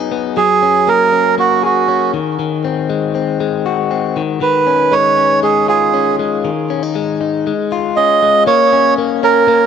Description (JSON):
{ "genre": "indie pop", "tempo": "118 BPM", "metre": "4/4", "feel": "straight", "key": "F# major", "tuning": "A4 = 440 Hz", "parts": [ { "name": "direct-recorded clean electric guitar", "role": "arpeggios", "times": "0.0-9.7 s", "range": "D#3 to G#4", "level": "-16 LUFS", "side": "left 9 dB", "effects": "cassette tape" }, { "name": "melodica", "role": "melody", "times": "0.4-9.7 s", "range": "F#4 to D#5", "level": "-12 LUFS", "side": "right 5 dB", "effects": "none" } ], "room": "moderate lush hall reverb, RT60 2.8 s", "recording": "home recording on cassette", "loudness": "-12 LUFS", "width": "side -7 dB against mid", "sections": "0.0-8.5 A section; 8.5-9.7 B section", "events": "none", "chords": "0.4 F#add9; 2.1 G#7; 4.2 C#add9; 6.5 D#7sus4; 7.5 C#; 8.5 F# (rootless)" }